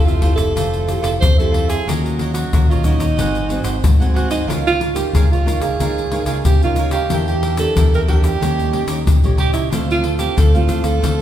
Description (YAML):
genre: samba and choro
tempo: 92 BPM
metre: 4/4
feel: straight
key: unclear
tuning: A4 = 438 Hz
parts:
  - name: breathy alto saxophone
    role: melody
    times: 0.0-11.2 s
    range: Eb4 to C5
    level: -21 LUFS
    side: right 4 dB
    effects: none
  - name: nylon-string guitar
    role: accompaniment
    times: 0.0-11.2 s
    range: Ab2 to G4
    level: -26 LUFS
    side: left 1 dB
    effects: none
  - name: fingered electric bass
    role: bass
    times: 0.0-11.2 s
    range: F1 to Db3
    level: -21 LUFS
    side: equal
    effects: none
  - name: cavaquinho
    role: accompaniment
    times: 0.1-11.2 s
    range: D4 to G5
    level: -26 LUFS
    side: right 4 dB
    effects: none
  - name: egg shaker, pandeiro and surdo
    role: percussion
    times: 0.1-11.2 s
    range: none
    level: -17 LUFS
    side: left 1 dB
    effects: none
room: wet recital hall reverb, RT60 1.7 s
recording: recorded in a church or concert hall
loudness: -14 LUFS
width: side -11 dB against mid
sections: 0.0-11.2 A section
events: none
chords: 0.0 Fmaj9; 1.9 Ebm9; 3.2 Ab7b9; 4.5 Db69; 7.1 Em7b5; 8.4 Eb7#11; 9.7 Dm7